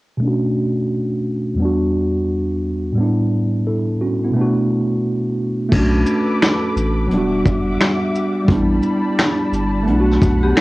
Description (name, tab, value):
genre	lo-fi hip hop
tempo	87 BPM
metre	4/4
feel	swing 64% on 16ths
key	B minor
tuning	A4 = 440 Hz
part	mellow tine electric piano	accompaniment	0.2-10.6 s	E2 to A4	-17 LUFS	equal	medium stereo tremolo, cassette tape, low-pass filter, plate reverb
part	muted studio string section	sustained chords	5.7-10.6 s	G3 to D6	-25 LUFS	left 1 dB	low-pass filter, cassette tape, plate reverb
part	warm sub bass	bass	5.7-10.5 s	E1 to B1	-20 LUFS	equal	none
part	vintage brush drum kit	drums	5.7-10.6 s	crash cymbal, finger snaps, hi-hat, kick drum, shaker, snare drum	-18 LUFS	equal	cassette tape
part	vibraphone with medium mallets	second line	10.4-10.6 s	B3 to G4	-17 LUFS	left 1 dB	low-pass filter, cassette tape
room	moderate studio reverb, RT60 0.5 s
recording	home recording on cassette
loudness	-16 LUFS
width	side -20 dB against mid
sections	0.2-5.7 A section; 5.7-10.6 B section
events	filter sweep on tine electric piano 0.2-5.7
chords	0.2 Bm9; 1.6 Em9; 3.0 A9sus4; 4.3 Bm7; 5.7 Bm9; 7.1 Em9; 8.5 A9sus4; 9.9 Gmaj9/B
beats	| 0.21 0.90 1.59 2.28 | 2.97 3.66 4.35 5.04 | 5.72 6.42 7.11 7.79 | 8.48 9.17 9.86 10.55